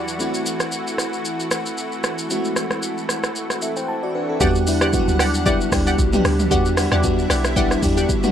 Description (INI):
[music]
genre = amapiano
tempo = 114 BPM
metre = 4/4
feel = swing 55% on 16ths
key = E minor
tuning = A4 = 440 Hz
[part]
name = FM electric piano with soft pad layer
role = accompaniment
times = 0.0-8.3 s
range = E2 to A5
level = -22 LUFS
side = equal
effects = chorus
[part]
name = lush unison pad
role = sustained chords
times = 0.0-8.3 s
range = D3 to F#5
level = -28 LUFS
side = equal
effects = chorus, sidechain pumping
[part]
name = minimal click drum kit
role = drums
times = 0.1-8.3 s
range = hi-hat, kick drum, rim click, shaker, toms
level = -22 LUFS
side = equal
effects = none
[part]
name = punchy chord stab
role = stabs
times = 4.4-8.1 s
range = G4 to F#5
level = -24 LUFS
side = equal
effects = chorus, analog delay
[part]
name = deep log drum bass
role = bass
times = 4.4-8.1 s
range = B1 to E2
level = -22 LUFS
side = equal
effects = none
[sound]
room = little or no reverb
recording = dry, gritty hardware recording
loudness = -18 LUFS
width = side -9 dB against mid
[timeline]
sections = 0.0-4.4 A section; 4.4-8.3 B section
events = FM electric piano fill 3.4-4.4; drop 4.4-8.3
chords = 0.2 F#m7b5; 4.4 Em9